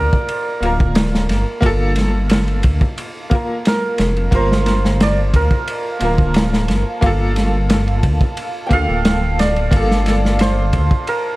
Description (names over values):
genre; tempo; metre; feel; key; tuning
trip hop; 89 BPM; 4/4; swing 54% on 16ths; G minor; A4 = 442 Hz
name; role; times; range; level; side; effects
santur; melody; 0.0-11.4 s; Bb4 to G5; -23 LUFS; right 2 dB; tape echo
bright upright piano; accompaniment; 0.0-11.4 s; Bb3 to Bb4; -23 LUFS; equal; tremolo, tape echo
dark analog pad; sustained chords; 0.3-11.4 s; F5 to D6; -30 LUFS; right 1 dB; chorus
dark detuned saw bass; bass; 0.0-10.9 s; D1 to D2; -18 LUFS; equal; none
crunchy breakbeat drum kit; drums; 0.1-11.2 s; kick drum, ride cymbal, snare drum; -18 LUFS; equal; none
room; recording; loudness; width
small room reverb; echo-heavy mix, vinyl crackle; -14 LUFS; side -19 dB against mid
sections
0.0-11.4 A section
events
none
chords
0.0 Gm9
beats
0.28 0.96 | 1.63 2.30 2.98 3.65 | 4.33 5.00 5.67 6.35 | 7.02 7.70 8.37 9.05 | 9.72 10.39 11.07